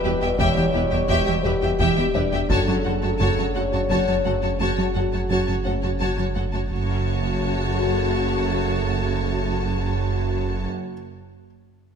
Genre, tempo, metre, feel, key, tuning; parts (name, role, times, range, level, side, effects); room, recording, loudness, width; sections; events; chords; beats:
cinematic, hybrid orchestral and electronic film score; 57 BPM (dotted quarters); 6/8; straight; F# phrygian; A4 = 441 Hz
warm symphonic violin section; melody; 0.0-10.7 s; E5 to A5; -31 LUFS; left 2 dB
clear symphonic violin section; second line; 0.0-10.7 s; A4 to E5; -31 LUFS; left 3 dB
clear symphonic viola section; accompaniment; 0.0-10.7 s; F#4 to G4; -29 LUFS; equal
clear trombone section; sustained chords; 0.0-10.7 s; B2 to A3; -32 LUFS; right 4 dB
mellow French horn section; sustained chords; 0.0-10.7 s; F#4 to C#5; -28 LUFS; left 5 dB
soft round pluck; arpeggios; 0.0-6.6 s; E3 to F#4; -34 LUFS; right 2 dB
rubbery square bass; riff; 0.0-6.6 s; E2 to F#3; -29 LUFS; left 2 dB
pure sine sub bass; bass; 0.0-10.7 s; E1 to F#1; -30 LUFS; equal
rich studio double bass section; bass; 0.0-10.7 s; E1 to F#1; -29 LUFS; right 5 dB
rich symphonic cello section; bass; 0.0-10.7 s; E2 to F#2; -29 LUFS; right 4 dB
dark baby grand piano; texture; 0.0-6.7 s; C#4 to A5; -35 LUFS; left 4 dB; ping-pong delay
taiko ensemble; drums; 0.4-4.6 s; -30 LUFS; equal
moderate scoring stage reverb, RT60 1.9 s; -20 LUFS; side -7 dB against mid
0.0-6.7 A section; 6.7-10.9 B section
0.0 Em; 2.5 F#m
| 0.39 1.44 | 2.49 3.55 | 4.60 5.65 | 6.71 7.76 | 8.81 9.86